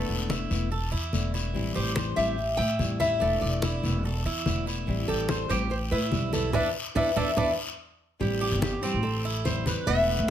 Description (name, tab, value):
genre	latin, Cuban son and guajira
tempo	144 BPM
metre	4/4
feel	straight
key	A minor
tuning	A4 = 440 Hz
part	nylon-string guitar	melody	0.0-10.3 s	G4 to G5	-29 LUFS	left 1 dB	none
part	nylon-string guitar	accompaniment	0.0-10.3 s	D3 to E4	-33 LUFS	left 4 dB	none
part	Cuban tres	arpeggios	0.0-10.3 s	A3 to C5	-33 LUFS	right 6 dB	none
part	upright bass	bass	0.0-10.3 s	E1 to A2	-30 LUFS	equal	none
part	congas	percussion	0.1-10.3 s	none	-32 LUFS	left 1 dB	none
part	guiro	percussion	0.3-10.3 s	none	-37 LUFS	left 5 dB	none
room	light reverb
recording	none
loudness	-25 LUFS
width	side -10 dB against mid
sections	0.0-8.2 A section; 8.2-10.3 B section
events	band accent 6.5-8.2; drum fill 7.6-8.2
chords	0.0 E7sus4; 1.5 Am7; 3.2 E7sus4; 4.9 Am7; 6.5 E7sus4; 8.2 Am7